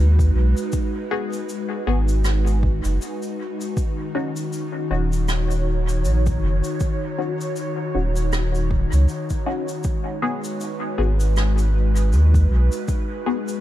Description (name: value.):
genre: ambient dub.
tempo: 79 BPM.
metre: 4/4.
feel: swing 58% on 16ths.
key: G# minor.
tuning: A4 = 438 Hz.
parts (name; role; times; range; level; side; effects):
airy breathy pad; sustained chords; 0.0-13.6 s; D#3 to C#5; -27 LUFS; left 1 dB; chorus, vintage 12-bit sampler grit.
soft dub sub bass; bass; 0.0-12.7 s; D#1 to D#2; -18 LUFS; equal; none.
electronic kick drum; drums; 0.2-13.1 s; none; -24 LUFS; equal; overdrive.
shaker and rim click; drums; 0.2-13.6 s; none; -34 LUFS; equal; dub echo.
filtered dub chord stab; stabs; 1.1-13.5 s; B3 to G#4; -29 LUFS; left 3 dB; phaser, lush chorus, cassette tape, dub echo.
room: small room ambience.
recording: none.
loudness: -19 LUFS.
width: side -13 dB against mid.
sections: 0.0-13.6 A section.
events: none.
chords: 0.0 G#m7; 3.8 D#m7; 9.8 G#m7.